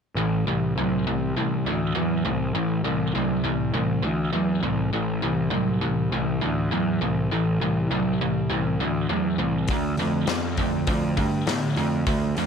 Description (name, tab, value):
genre	blues rock power trio and southern rock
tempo	101 BPM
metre	4/4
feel	straight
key	A minor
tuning	A4 = 438 Hz
part	distorted electric guitar	riff	0.2-12.5 s	A2 to B3	-24 LUFS	equal	distortion
part	fuzz picked electric bass	bass	0.2-12.5 s	A1 to A2	-27 LUFS	equal	overdrive
part	big rock drum kit	drums	9.7-12.5 s	hi-hat, kick drum, snare drum	-28 LUFS	left 2 dB	none
room	small room ambience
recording	1960s-style stereo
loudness	-22 LUFS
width	side -6 dB against mid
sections	0.2-12.5 A section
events	none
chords	0.2 Am; 9.7 Dm